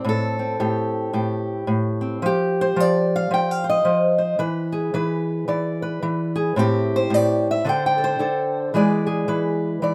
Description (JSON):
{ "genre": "acoustic country blues, solo or duo", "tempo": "110 BPM", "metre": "4/4", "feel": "swing 61% on 8ths", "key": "A minor", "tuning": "A4 = 440 Hz", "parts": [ { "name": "fingerpicked old ladder-braced acoustic guitar", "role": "solo", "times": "0.0-9.9 s", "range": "A2 to G5", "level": "-22 LUFS", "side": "equal", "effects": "none" } ], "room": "light reverb, studio reverb", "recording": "rough home demo mix", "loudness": "-22 LUFS", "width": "mono", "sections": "0.0-9.9 A section", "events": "none", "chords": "0.0 Am7; 2.2 F5; 4.4 E7; 6.6 Am7; 7.7 D5; 8.7 E7" }